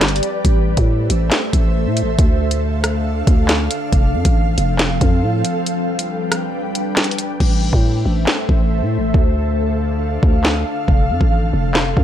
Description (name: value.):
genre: hip hop, drill.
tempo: 138 BPM.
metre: 4/4.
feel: half-time.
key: A minor.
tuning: A4 = 440 Hz.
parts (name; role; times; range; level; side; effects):
ethereal airy pad; sustained chords; 0.0-12.0 s; D3 to G5; -21 LUFS; equal; ensemble chorus, built-in reverb.
growling 808-style bass; bass; 0.0-12.0 s; F1 to A2; -18 LUFS; equal; none.
drill drum kit; drums; 0.0-12.0 s; crash cymbal, handclaps, hi-hat, kick drum, rim click, snare drum; -16 LUFS; equal; vintage 12-bit sampler grit.
room: little or no reverb.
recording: faint mains hum.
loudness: -14 LUFS.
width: side -10 dB against mid.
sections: 0.0-7.4 A section; 7.4-12.0 B section.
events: break 5.7-7.4; hi-hats muted 7.4-12.0.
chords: 0.4 Am; 2.2 Dm; 3.9 F; 5.7 G; 7.4 Am; 9.1 Dm; 10.9 F.